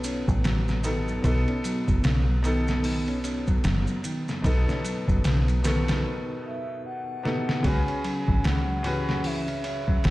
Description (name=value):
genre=trip hop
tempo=75 BPM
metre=4/4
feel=swing 59% on 16ths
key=unclear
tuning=A4 = 445 Hz
part: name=bright upright piano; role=accompaniment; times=0.0-10.1 s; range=B2 to B4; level=-29 LUFS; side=equal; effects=harmonic tremolo, vintage 12-bit sampler grit, tape echo
part: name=mellow electric guitar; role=arpeggios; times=0.0-10.1 s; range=F#2 to C#4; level=-33 LUFS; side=left 1 dB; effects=digital delay
part: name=deep dub fingered electric bass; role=bass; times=0.0-10.1 s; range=F#1 to C#2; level=-26 LUFS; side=equal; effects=none
part: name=trip hop sampler-style drum kit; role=drums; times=0.0-10.1 s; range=hi-hat, kick drum, ride cymbal, snare drum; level=-28 LUFS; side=equal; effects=overdrive
part: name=maracas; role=percussion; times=0.0-6.0 s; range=none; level=-42 LUFS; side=right 2 dB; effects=none
part: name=pure breathy sine lead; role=melody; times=6.5-10.1 s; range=E5 to G#5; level=-34 LUFS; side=equal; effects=chorus, tape echo
room=little or no reverb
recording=played on a big sound system in a bare room, stone room reverb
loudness=-23 LUFS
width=side -18 dB against mid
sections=0.0-7.6 A section; 7.6-10.1 B section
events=break 6.0-7.6; drum fill 7.2-7.6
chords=0.0 B7; 7.6 C#7sus4